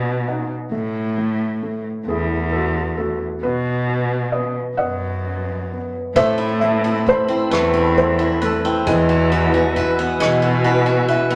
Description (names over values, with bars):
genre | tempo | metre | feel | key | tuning
acoustic folk-pop ballad | 44 BPM (dotted quarters) | 6/8 | straight | unclear | A4 = 441 Hz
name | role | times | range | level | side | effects
felt-muted upright piano | melody | 0.0-11.4 s | B2 to F#5 | -23 LUFS | equal | none
warm cello | bass | 0.0-11.3 s | E2 to B2 | -23 LUFS | equal | none
hollow soft pad | sustained chords | 6.1-11.4 s | C4 to E6 | -30 LUFS | equal | ensemble chorus
picked swing-style acoustic guitar | arpeggios | 6.2-11.4 s | G#3 to B4 | -24 LUFS | equal | none
soft brush drum kit | drums | 6.2-11.3 s | hi-hat, kick drum, rim click | -30 LUFS | equal | none
room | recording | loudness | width
moderate large studio reverb, RT60 0.9 s | none | -19 LUFS | mono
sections
0.0-6.2 A section; 6.2-11.4 B section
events
felt piano fill 0.0-0.7, 10.2-11.4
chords
0.0 Emaj7 (rootless); 0.7 A5; 3.4 B; 6.2 Amadd9; 8.9 Eadd9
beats
| 0.73 2.08 | 3.43 4.79 | 6.16 7.52 | 8.87 10.21